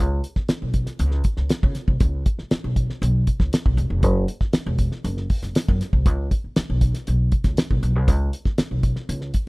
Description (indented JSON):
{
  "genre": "funk",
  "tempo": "119 BPM",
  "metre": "4/4",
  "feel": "straight",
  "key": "unclear",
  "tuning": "A4 = 440 Hz",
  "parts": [
    { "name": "upright bass", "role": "bass", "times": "0.0-9.3 s", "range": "E1 to C#3", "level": "-22 LUFS", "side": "equal", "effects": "none" },
    { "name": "cloth-damped thuddy drum kit", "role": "drums", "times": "0.2-9.5 s", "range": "hi-hat, kick drum, snare drum", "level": "-21 LUFS", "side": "equal", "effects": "none" }
  ],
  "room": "little or no reverb",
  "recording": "rough home demo mix",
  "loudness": "-19 LUFS",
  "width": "side -28 dB against mid",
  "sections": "0.0-9.5 A section",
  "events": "none",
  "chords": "none",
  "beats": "0.49 1.00 1.51 | 2.01 2.52 3.02 3.53 | 4.04 4.54 5.05 5.55 | 6.06 6.56 7.07 7.58 | 8.08 8.59 9.09"
}